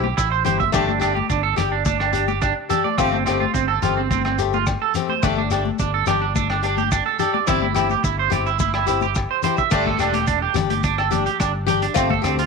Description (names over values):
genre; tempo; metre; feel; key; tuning
highlife guitar band; 107 BPM; 4/4; straight; unclear; A4 = 441 Hz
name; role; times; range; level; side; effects
picked swing-style acoustic guitar; accompaniment; 0.0-12.4 s; F3 to G4; -24 LUFS; left 14 dB; none
electric guitar at the edge of break-up; arpeggios; 0.0-12.5 s; C4 to E5; -21 LUFS; right 14 dB; lush chorus, tape echo
fingered electric bass; bass; 0.0-12.5 s; E1 to D2; -25 LUFS; equal; none
congas; percussion; 0.0-12.5 s; none; -28 LUFS; left 13 dB; none
vintage drum kit; drums; 0.2-12.5 s; crash cymbal, hi-hat, kick drum, rim click; -26 LUFS; equal; none
agogo bells; percussion; 0.2-12.4 s; none; -31 LUFS; left 13 dB; none
shekere; percussion; 0.2-12.5 s; none; -32 LUFS; left 5 dB; none
room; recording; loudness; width
light reverb, small room ambience; 1960s-style stereo with parts hard left and right; -18 LUFS; side -4 dB against mid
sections
0.0-9.7 A section; 9.7-12.5 B section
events
none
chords
0.0 C; 0.7 Gsus2; 3.0 F/G; 5.2 Gsus2; 7.5 C/G; 9.7 Gsus2; 12.0 F/G